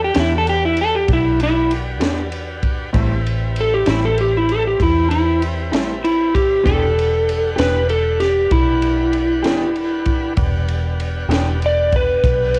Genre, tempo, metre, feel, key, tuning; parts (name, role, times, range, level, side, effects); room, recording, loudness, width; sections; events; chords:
slow blues; 64 BPM (dotted quarters); 12/8; straight; E minor; A4 = 441 Hz
electric slide guitar; melody; 0.0-12.6 s; E4 to D5; -19 LUFS; equal
tonewheel organ; sustained chords; 0.0-12.6 s; B3 to F#5; -32 LUFS; equal; slow rotary speaker, cassette tape
vintage muted fingered electric bass; bass; 0.0-12.6 s; E1 to E2; -23 LUFS; equal
electric guitar through a small old amp; accompaniment; 0.1-11.5 s; A2 to G4; -26 LUFS; equal; harmonic tremolo, cassette tape
compact cocktail drum kit; drums; 0.1-12.6 s; kick drum, ride cymbal, snare drum; -25 LUFS; equal
small room ambience; home recording on cassette; -17 LUFS; mono
0.0-12.6 A section
electric slide guitar solo 0.0-12.6
0.0 Em7; 2.9 Am7; 6.7 Em7